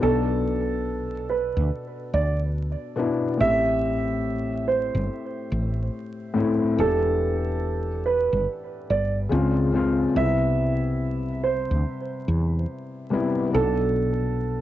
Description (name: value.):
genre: lo-fi hip hop.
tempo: 71 BPM.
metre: 4/4.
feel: swing 65% on 16ths.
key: unclear.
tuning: A4 = 440 Hz.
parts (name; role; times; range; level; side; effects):
dark upright piano; melody; 0.0-14.6 s; A4 to E5; -26 LUFS; right 5 dB; low-pass filter, cassette tape, plate reverb, analog delay.
felt-muted upright piano; accompaniment; 0.0-14.6 s; A2 to A4; -26 LUFS; left 4 dB; cassette tape, low-pass filter.
woody fretless electric bass; bass; 0.0-14.6 s; E1 to E2; -26 LUFS; equal; none.
room: wet studio ambience, RT60 0.5 s.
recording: home recording on cassette, vinyl crackle, nothing above 8.0 kHz.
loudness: -22 LUFS.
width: side -13 dB against mid.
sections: 0.0-14.6 A section.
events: none.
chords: 0.0 Bm7; 3.4 Am7; 6.8 Em7; 9.3 C#maj7; 10.2 Cmaj7; 13.5 Bm7.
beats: | 0.01 0.86 1.70 2.55 | 3.40 4.24 5.08 5.93 | 6.78 7.62 8.46 9.31 | 10.15 11.00 11.85 12.69 | 13.54 14.38.